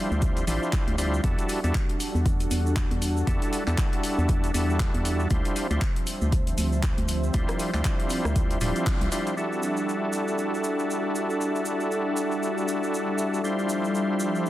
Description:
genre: deep house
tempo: 118 BPM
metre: 4/4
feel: swing 58% on 16ths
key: unclear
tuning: A4 = 440 Hz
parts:
  - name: warm analog pad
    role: sustained chords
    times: 0.0-14.5 s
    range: F3 to E5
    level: -34 LUFS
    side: right 1 dB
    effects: lush chorus, sidechain pumping
  - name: overdriven tonewheel organ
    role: stabs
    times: 0.0-14.5 s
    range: G3 to C5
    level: -29 LUFS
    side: equal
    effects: chorus vibrato, sidechain pumping, tape echo
  - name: airy breathy pad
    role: texture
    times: 0.0-14.5 s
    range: F3 to A5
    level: -32 LUFS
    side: left 1 dB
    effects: chorus, sidechain pumping
  - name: organ-like FM bass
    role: bass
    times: 0.1-9.1 s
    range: D1 to E2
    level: -26 LUFS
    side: equal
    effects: sidechain pumping
  - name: tube shaker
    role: percussion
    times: 0.1-14.5 s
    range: none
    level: -39 LUFS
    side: right 1 dB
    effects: none
  - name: deep house drum kit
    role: drums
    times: 0.2-9.4 s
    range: handclaps, hi-hat, rim click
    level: -35 LUFS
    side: left 1 dB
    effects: overdrive
  - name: electronic kick drum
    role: drums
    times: 0.2-9.0 s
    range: none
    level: -26 LUFS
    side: equal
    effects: overdrive
room: light reverb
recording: dense, heavily limited modern master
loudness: -23 LUFS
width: side -14 dB against mid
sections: 0.0-9.4 A section; 9.4-14.5 B section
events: fade-in on analog synth pad 0.0-9.4; band accent 8.9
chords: 0.0 Dm11; 1.2 Em11; 5.3 Dm11; 9.4 Em11; 13.4 Dm11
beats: 0.22 0.73 | 1.24 1.75 2.26 2.76 | 3.27 3.78 4.29 4.80 | 5.31 5.82 6.32 6.83 | 7.34 7.85 8.36 8.87 | 9.37 9.88 10.39 10.90 | 11.41 11.92 12.43 12.93 | 13.44 13.95 14.46

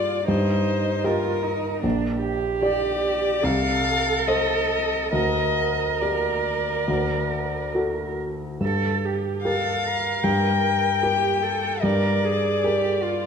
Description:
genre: classical, slow romantic movement for piano trio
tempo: 67-79 BPM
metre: 4/4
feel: rubato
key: G minor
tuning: A4 = 444 Hz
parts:
  - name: warm violin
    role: melody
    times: 0.0-13.3 s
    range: Bb4 to G5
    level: -25 LUFS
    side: left 6 dB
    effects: none
  - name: warm cello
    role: second line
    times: 0.0-13.3 s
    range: D4 to Bb4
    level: -26 LUFS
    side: right 8 dB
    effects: none
  - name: warm grand piano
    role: accompaniment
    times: 0.0-13.3 s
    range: Bb1 to F5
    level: -25 LUFS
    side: equal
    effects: none
room: wet recital hall reverb, RT60 1.5 s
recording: minimal, uncompressed stereo recording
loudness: -20 LUFS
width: side -6 dB against mid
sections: 0.0-13.3 A section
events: none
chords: 0.3 Cm7/G; 1.8 Gm/Bb; 3.4 Adim/C; 5.1 Gm/D; 6.9 D; 8.6 Gm; 11.8 Bb7/G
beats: 0.28 1.04 | 1.84 2.64 3.45 4.27 | 5.13 6.02 6.88 7.74 | 8.61 9.44 10.24 11.03 | 11.84 12.65

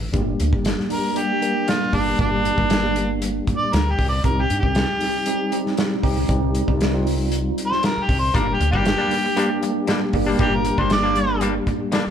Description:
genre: straight-eighth soul blues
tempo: 117 BPM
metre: 4/4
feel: straight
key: G minor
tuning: A4 = 444 Hz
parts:
  - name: woody fretless electric bass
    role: bass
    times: 0.0-12.1 s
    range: G1 to G2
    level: -24 LUFS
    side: equal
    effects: none
  - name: mellow tine electric piano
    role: accompaniment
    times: 0.1-12.0 s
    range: G3 to Bb4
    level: -23 LUFS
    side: right 1 dB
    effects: medium stereo tremolo
  - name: warm soul drum kit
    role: drums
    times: 0.1-12.1 s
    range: hi-hat, kick drum, snare drum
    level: -24 LUFS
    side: equal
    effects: none
  - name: mellow harmonica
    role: melody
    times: 0.9-11.4 s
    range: D4 to D5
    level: -22 LUFS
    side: equal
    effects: overdrive
  - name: direct-recorded clean electric guitar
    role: stabs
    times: 8.3-12.1 s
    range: G2 to D4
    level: -26 LUFS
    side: left 4 dB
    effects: none
room: moderate large studio reverb, RT60 1.5 s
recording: band playing live in one room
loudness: -18 LUFS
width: side -8 dB against mid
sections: 0.0-12.1 A section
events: harmonica solo 0.0-12.1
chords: 0.1 Gm; 4.2 Cm; 8.3 Gm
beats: | 0.14 0.66 1.17 1.68 | 2.19 2.71 3.22 3.73 | 4.25 4.76 5.27 5.78 | 6.29 6.81 7.32 7.83 | 8.34 8.86 9.37 9.88 | 10.39 10.90 11.42 11.93

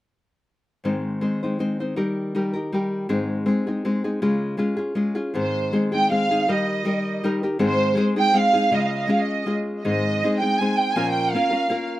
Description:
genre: mexican folk, mariachi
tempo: 160 BPM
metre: 3/4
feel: rubato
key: Ab major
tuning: A4 = 440 Hz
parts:
  - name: nylon-string guitar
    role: accompaniment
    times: 0.8-12.0 s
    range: Ab2 to C5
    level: -22 LUFS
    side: left 1 dB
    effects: none
  - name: warm studio violin section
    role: melody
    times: 5.4-11.9 s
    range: C5 to Ab5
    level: -22 LUFS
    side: right 2 dB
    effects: slapback echo
room: little or no reverb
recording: recorded outdoors, with no room sound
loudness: -20 LUFS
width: side -15 dB against mid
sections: 0.8-5.4 A section; 5.4-12.0 B section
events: none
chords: 0.8 Ab; 2.0 Eb; 3.1 Ab; 4.2 Db; 5.4 Ab; 6.5 Eb; 7.6 Ab; 8.7 Db; 9.9 Ab; 11.0 Bbm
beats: | 0.83 1.21 1.59 | 1.97 2.35 2.73 | 3.10 3.48 3.85 | 4.23 4.60 4.99 | 5.37 5.75 6.13 | 6.50 6.87 7.24 | 7.61 7.98 8.35 | 8.72 9.10 9.48 | 9.86 10.23 10.60 | 10.97 11.35 11.71

